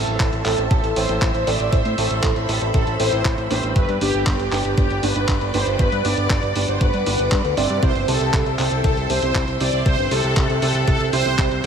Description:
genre	italo disco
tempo	118 BPM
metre	4/4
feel	straight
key	A dorian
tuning	A4 = 440 Hz
part	mellow synth brass	melody	0.0-11.7 s	G4 to D5	-23 LUFS	equal	chorus, phaser, tape echo
part	string machine, full ensemble	sustained chords	0.0-11.7 s	B4 to F#6	-28 LUFS	left 1 dB	ensemble chorus
part	bright baby grand piano	stabs	0.0-11.7 s	G2 to C5	-26 LUFS	right 6 dB	none
part	fat analog bass	bass	0.0-11.7 s	G1 to A2	-23 LUFS	equal	none
part	dusty soul sampler-style drum kit	drums	0.1-11.7 s	handclaps, hi-hat	-27 LUFS	equal	none
part	electronic kick drum	drums	0.2-11.5 s	none	-20 LUFS	equal	none
room	little or no reverb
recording	none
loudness	-17 LUFS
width	side -7 dB against mid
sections	0.0-11.7 A section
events	none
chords	0.0 Am; 3.8 G; 7.8 C

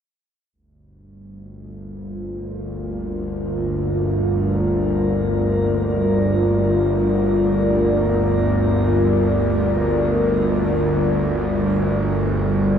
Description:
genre	dark ambient drone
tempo	free time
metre	none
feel	none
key	G minor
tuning	A4 = 440 Hz
part	deep dark ambient pad	sustained chords	1.9-12.8 s	G3 to D5	-20 LUFS	left 1 dB	chorus, built-in reverb, shimmer reverb
part	bowed-like drone	drone	1.6-12.8 s	G1 to D2	-21 LUFS	right 1 dB	built-in reverb
room	wet huge ambient reverb, RT60 8.6 s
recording	in a vast, echoing space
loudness	-17 LUFS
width	side -8 dB against mid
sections	0.5-12.8 A section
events	none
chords	0.5 Gm

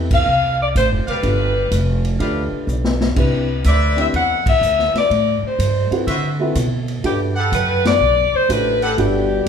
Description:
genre	jazz, big band swing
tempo	124 BPM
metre	4/4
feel	swing 67% on 8ths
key	G major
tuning	A4 = 438 Hz
part	dark baby grand piano	accompaniment	0.0-9.3 s	A3 to B4	-24 LUFS	equal	none
part	upright bass	bass	0.0-9.5 s	E1 to D3	-20 LUFS	right 1 dB	none
part	warm saxophone section	melody	0.1-9.5 s	G4 to F#5	-18 LUFS	left 3 dB	none
part	vintage drum kit	drums	0.1-9.5 s	crash cymbal, hi-hat, kick drum, ride cymbal, snare drum	-24 LUFS	equal	none
part	warm trumpet section	stabs	1.1-8.9 s	F#4 to F#5	-25 LUFS	equal	none
part	dark trombone section	second line	9.0-9.5 s	B2 to G3	-23 LUFS	right 2 dB	none
room	moderate large studio reverb, RT60 1.3 s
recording	band playing live in one room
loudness	-15 LUFS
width	side -7 dB against mid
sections	0.0-9.5 A section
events	band accent 0.0, 4.4, 7.8; drum fill 2.7-3.2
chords	0.0 Fmaj9#11; 1.2 G7; 3.2 Cmaj9; 5.1 Am7; 6.1 D13; 7.0 Gmaj9

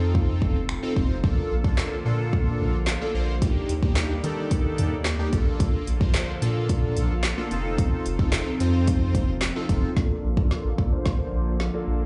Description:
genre	dance-pop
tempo	110 BPM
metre	4/4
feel	straight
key	Bb major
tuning	A4 = 440 Hz
part	big bright polysynth	accompaniment	0.0-12.0 s	Bb3 to C5	-32 LUFS	equal	chorus, sidechain pumping, low-pass filter, slapback echo
part	airy breathy pad	sustained chords	0.0-12.1 s	D3 to D5	-36 LUFS	equal	chorus, sidechain pumping, low-pass filter
part	round analog bass	bass	0.0-12.1 s	F1 to Eb3	-28 LUFS	equal	sidechain pumping
part	deep house drum kit	drums	0.1-11.7 s	finger snaps, handclaps, hi-hat, kick drum, snare drum	-26 LUFS	equal	none
room	little or no reverb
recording	live gig heard through the venue's PA, club reverb, nothing above 10.7 kHz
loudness	-24 LUFS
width	mono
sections	0.0-10.0 A section; 10.0-12.1 B section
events	build-up 10.0-12.1; drum fill 10.0-12.1; filter sweep 10.0-12.1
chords	0.0 F7; 1.2 Bbmaj7; 3.4 Ebmaj7; 5.3 Bbmaj7; 7.5 F7; 10.0 Bbmaj7

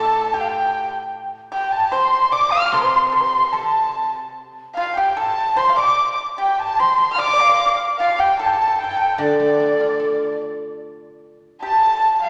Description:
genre	chinese traditional, Chinese chamber ensemble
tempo	74 BPM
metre	2/4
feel	rubato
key	D yu mode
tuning	A4 = 440 Hz
part	large dizi	melody	0.0-12.3 s	D5 to D6	-23 LUFS	equal	none
part	dark erhu	second line	0.0-12.3 s	D5 to F6	-21 LUFS	equal	none
part	pipa	second line	0.0-12.3 s	D4 to F5	-30 LUFS	equal	none
part	guzheng	accompaniment	0.0-5.2, 9.2-11.6 s	A2 to A4	-25 LUFS	equal	none
room	wet scoring stage reverb, RT60 2.0 s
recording	none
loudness	-18 LUFS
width	mono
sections	0.0-10.8 A section; 10.8-12.3 B section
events	none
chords	none

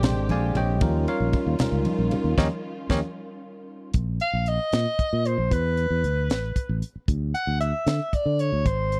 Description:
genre	electric jazz fusion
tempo	76 BPM (dotted quarters)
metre	6/8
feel	straight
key	Eb mixolydian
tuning	A4 = 440 Hz
part	bell-like tine electric piano	accompaniment	0.0-3.0 s	G3 to Ab5	-29 LUFS	equal	none
part	dark studio string section	sustained chords	0.0-3.9 s	C3 to G4	-35 LUFS	equal	none
part	fingered electric bass	bass	0.0-9.0 s	Ab1 to D3	-27 LUFS	equal	none
part	tight funk drum kit	drums	0.0-9.0 s	hi-hat, kick drum, ride cymbal, snare drum	-28 LUFS	equal	none
part	congas	percussion	0.0-3.0 s	none	-33 LUFS	equal	none
part	warm soprano saxophone	melody	4.2-9.0 s	B4 to Gb5	-28 LUFS	equal	slapback echo
room	small room ambience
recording	dry, close 1970s-style studio recording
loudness	-25 LUFS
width	mono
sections	0.0-4.0 A section; 4.0-9.0 B section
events	band accent 2.4-4.0; drum fill 3.7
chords	0.0 Bb13; 0.8 Eb9; 4.0 Bbsus4; 5.5 E5; 6.3 Asus2; 7.1 Dsus2

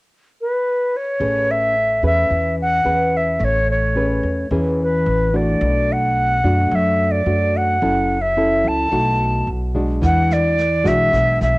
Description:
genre	bossa nova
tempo	109 BPM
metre	4/4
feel	straight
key	A major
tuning	A4 = 440 Hz
part	reedy silver concert flute	melody	0.4-11.6 s	B4 to A5	-18 LUFS	equal	cassette tape, plate reverb
part	nylon-string guitar	accompaniment	1.2-11.6 s	B2 to B4	-21 LUFS	equal	cassette tape
part	upright bass	bass	1.2-11.6 s	F#1 to F#2	-22 LUFS	equal	none
part	vintage brush drum kit	drums	10.0-11.5 s	kick drum, rim click, snare drum	-28 LUFS	equal	cassette tape
room	moderate studio ambience, RT60 0.5 s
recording	home recording on cassette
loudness	-15 LUFS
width	side -21 dB against mid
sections	0.0-1.2 A section; 1.2-10.0 B section; 10.0-11.6 C section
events	none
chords	0.0 N.C.; 1.2 Amaj9; 5.6 Bm7; 7.8 F#m7; 8.9 B7; 10.0 E9

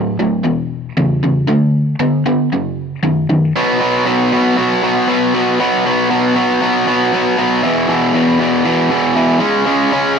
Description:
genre	rock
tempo	117 BPM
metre	4/4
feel	straight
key	unclear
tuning	A4 = 439 Hz
part	raw garage guitar	solo	0.0-10.2 s	E2 to C#4	-12 LUFS	equal	overdrive
room	light reverb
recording	dry, close 1970s-style studio recording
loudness	-12 LUFS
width	side -6 dB against mid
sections	0.0-3.5 A section; 3.5-10.2 B section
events	none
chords	0.5 E5; 1.5 D5; 2.5 F#5; 3.5 B5; 7.6 E5; 9.4 C#5

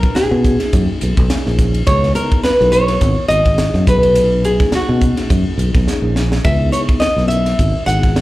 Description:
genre	electric jazz fusion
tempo	105 BPM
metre	4/4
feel	swing 55% on 16ths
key	unclear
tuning	A4 = 440 Hz
part	nylon-string guitar	melody	0.0-8.2 s	F#4 to F#5	-16 LUFS	equal	none
part	mellow tine electric piano	accompaniment	0.0-8.2 s	A#2 to B4	-24 LUFS	left 1 dB	medium stereo tremolo, phaser, slapback echo
part	fingered electric bass	bass	0.0-8.2 s	G#1 to B2	-16 LUFS	equal	none
part	crisp fusion drum kit	drums	0.0-8.2 s	hi-hat, kick drum, ride cymbal, snare drum	-17 LUFS	equal	none
room	light reverb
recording	live gig heard through the venue's PA, club reverb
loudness	-12 LUFS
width	side -17 dB against mid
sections	0.0-8.2 A section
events	drum fill 5.9-6.4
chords	0.0 Bmaj13; 1.9 C#m9; 3.9 Bmaj13; 6.4 C#m9

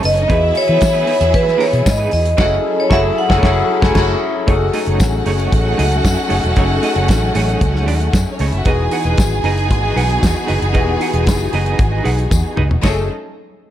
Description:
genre	disco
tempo	115 BPM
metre	4/4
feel	straight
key	F# dorian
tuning	A4 = 440 Hz
part	vibraphone with hard mallets	melody	0.0-3.9 s	B4 to F#5	-16 LUFS	equal	none
part	rich studio violin section	second line	0.0-13.1 s	A3 to G#5	-23 LUFS	right 1 dB	none
part	barky tine electric piano	accompaniment	0.0-13.1 s	E3 to A4	-22 LUFS	left 5 dB	tube saturation, phaser
part	clean electric guitar	accompaniment	0.0-13.0 s	A3 to F#5	-24 LUFS	right 6 dB	tremolo
part	clear studio string section	sustained chords	0.0-13.1 s	E3 to G#5	-24 LUFS	equal	none
part	vintage muted fingered electric bass	bass	0.0-13.1 s	E1 to E3	-18 LUFS	equal	none
part	damped 70s drum kit	drums	0.0-13.0 s	crash cymbal, hi-hat, kick drum, ride cymbal, snare drum, toms	-18 LUFS	equal	none
part	tambourine	percussion	0.8-13.1 s	none	-31 LUFS	left 9 dB	none
room	light reverb, small room ambience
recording	none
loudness	-13 LUFS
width	side -11 dB against mid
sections	0.0-4.5 A section; 4.5-12.8 B section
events	band accent 2.4-4.5; drum fill 12.3-12.8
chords	0.3 Emaj7; 2.4 F#m9; 4.5 F#m69; 8.7 Emaj7; 12.8 F#m69

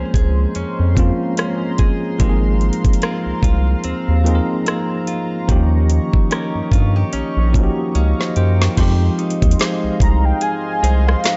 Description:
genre	contemporary R&B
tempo	73 BPM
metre	4/4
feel	swing 58% on 16ths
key	F minor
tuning	A4 = 440 Hz
part	bell-like tine electric piano	accompaniment	0.0-11.4 s	F3 to F5	-24 LUFS	equal	none
part	chorused pulse-width pad	sustained chords	0.0-11.4 s	Ab3 to Db6	-30 LUFS	equal	none
part	direct-recorded clean electric guitar	arpeggios	0.0-11.4 s	Eb3 to C5	-29 LUFS	equal	delay
part	round analog bass	bass	0.0-11.2 s	Ab1 to G2	-18 LUFS	equal	none
part	smooth R&B drum kit	drums	0.1-11.4 s	crash cymbal, hi-hat, kick drum, rim click, snare drum	-20 LUFS	equal	none
part	warm velvety synth lead	melody	10.0-11.4 s	F5 to Bb5	-24 LUFS	equal	chorus, delay
room	little or no reverb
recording	dark, warm production, nothing above 7.8 kHz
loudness	-17 LUFS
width	mono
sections	0.0-8.8 A section; 8.8-11.4 B section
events	drum fill 8.0-8.8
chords	0.0 Bbm9; 2.2 Ab69; 5.5 Eb7; 8.8 Fm7

